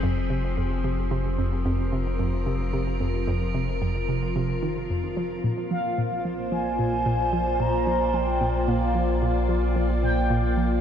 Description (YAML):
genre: ambient, sequencer-driven space music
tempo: 111 BPM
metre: 4/4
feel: straight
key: F dorian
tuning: A4 = 443 Hz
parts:
  - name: evolving wavetable pad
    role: sustained chords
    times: 0.0-10.8 s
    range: F3 to D5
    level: -27 LUFS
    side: equal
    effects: chorus, built-in reverb
  - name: hollow square pluck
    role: riff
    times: 0.0-10.7 s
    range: F2 to F3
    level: -28 LUFS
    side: right 2 dB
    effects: chorus, phaser, tape echo
  - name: round analog bass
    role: bass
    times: 0.0-10.8 s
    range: F1 to Bb1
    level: -28 LUFS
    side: equal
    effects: none
  - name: expressive synth lead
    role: melody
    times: 5.7-10.5 s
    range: F5 to Bb5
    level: -28 LUFS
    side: left 1 dB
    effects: analog chorus, tape echo
room: moderate huge ambient reverb, RT60 8.3 s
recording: dark, warm production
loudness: -23 LUFS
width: side -9 dB against mid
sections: 0.0-10.8 A section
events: none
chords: 0.0 Fm; 5.4 Bb